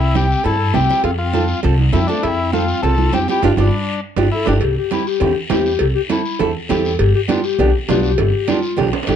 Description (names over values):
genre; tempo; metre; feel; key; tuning
latin, cumbia; 202 BPM; 4/4; straight; C major; A4 = 440 Hz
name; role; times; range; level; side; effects
combo organ; melody; 0.0-4.5 s; D4 to A4; -21 LUFS; left 3 dB; plate reverb
breathy clarinet; second line; 0.0-9.2 s; G3 to A4; -21 LUFS; left 7 dB; none
upright bass; bass; 0.0-9.2 s; G1 to G2; -18 LUFS; equal; none
nylon-string guitar; accompaniment; 0.1-9.2 s; B3 to C5; -20 LUFS; right 5 dB; none
congas; percussion; 0.1-9.2 s; none; -24 LUFS; right 8 dB; none
guiro; percussion; 0.2-9.2 s; none; -30 LUFS; left 4 dB; none
cowbell and timbales; percussion; 0.4-9.2 s; none; -26 LUFS; right 8 dB; none
room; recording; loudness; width
light reverb; dark, warm production; -14 LUFS; side -9 dB against mid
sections
0.0-4.6 A section; 4.6-9.2 B section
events
band accent 3.4-4.6; drum fill 3.7-4.6, 8.9; clarinet solo 4.6-9.2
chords
0.0 C; 1.0 F; 3.4 G5; 4.6 C; 7.0 G7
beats
0.15 0.45 0.75 | 1.05 1.34 1.64 1.94 | 2.24 2.54 2.83 3.13 | 3.43 3.73 4.02 4.32 | 4.62 4.92 5.21 5.51 | 5.81 6.11 6.40 6.70 | 7.00 7.30 7.59 7.89 | 8.19 8.49 8.78 9.08